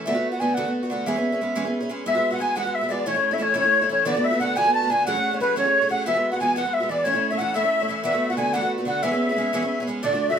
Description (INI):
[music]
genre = celtic folk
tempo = 120 BPM (dotted quarters)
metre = 6/8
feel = straight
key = E mixolydian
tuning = A4 = 439 Hz
[part]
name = picked twelve-string acoustic guitar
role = accompaniment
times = 0.0-10.4 s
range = D2 to G#4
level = -25 LUFS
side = right 1 dB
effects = none
[part]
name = bright reedy wooden flute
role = melody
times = 0.1-10.4 s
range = B4 to A5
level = -22 LUFS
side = equal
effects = none
[part]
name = musette accordion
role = second line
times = 2.1-10.4 s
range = B4 to A5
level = -28 LUFS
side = left 4 dB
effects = none
[sound]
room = moderate studio reverb, RT60 0.6 s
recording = minimal, uncompressed stereo recording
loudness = -20 LUFS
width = side -8 dB against mid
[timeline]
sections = 0.0-2.1 A section; 2.1-10.0 A section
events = none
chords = 0.1 Bm7; 1.1 E6; 2.1 Eadd9; 3.1 A/E; 4.1 Bm7; 5.1 F#madd9/E; 6.1 Eadd9; 7.0 A/E; 8.0 Bm7; 9.0 E6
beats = | 0.06 0.56 | 1.06 1.56 | 2.06 2.56 | 3.06 3.56 | 4.06 4.56 | 5.06 5.56 | 6.05 6.55 | 7.05 7.55 | 8.05 8.54 | 9.04 9.54 | 10.04